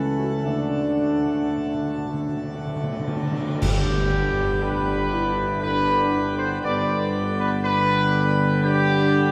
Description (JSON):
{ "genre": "classical, ceremonial fanfare", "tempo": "55-60 BPM", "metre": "3/4", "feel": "straight", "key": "G major from 3.6 s", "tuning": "A4 = 441 Hz", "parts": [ { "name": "mellow trumpet section", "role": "melody", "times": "0.0-9.3 s", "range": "G4 to F#5", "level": "-27 LUFS", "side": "equal", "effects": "none" }, { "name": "clear trombone section", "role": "sustained chords", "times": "0.0-9.3 s", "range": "D3 to B3", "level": "-34 LUFS", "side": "equal", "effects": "none" }, { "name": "pipe organ, plenum", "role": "sustained chords", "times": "0.0-9.3 s", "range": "D3 to B4", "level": "-33 LUFS", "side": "equal", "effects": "none" }, { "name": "mellow tuba", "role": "bass", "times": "0.0-9.3 s", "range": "G1 to D2", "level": "-30 LUFS", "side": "equal", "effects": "none" }, { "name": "mellow French horn section", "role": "sustained chords", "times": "0.2-9.3 s", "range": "B3 to F#4", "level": "-30 LUFS", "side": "equal", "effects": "none" }, { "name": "cymbal swell, clash cymbals and concert bass drum", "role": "percussion", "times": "0.4-5.6 s", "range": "none", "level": "-33 LUFS", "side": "equal", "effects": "none" }, { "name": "timpani", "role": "percussion", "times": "0.4-5.1 s", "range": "G2 to D3", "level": "-32 LUFS", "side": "equal", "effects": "none" } ], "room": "wet cathedral reverb, RT60 5.5 s", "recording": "heard from further back in the room", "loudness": "-23 LUFS", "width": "mono", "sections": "0.0-3.6 A section; 3.6-9.3 B section", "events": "timpani fill 0.4-3.6; band accent 3.6-4.6", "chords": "0.4 D; 3.6 G" }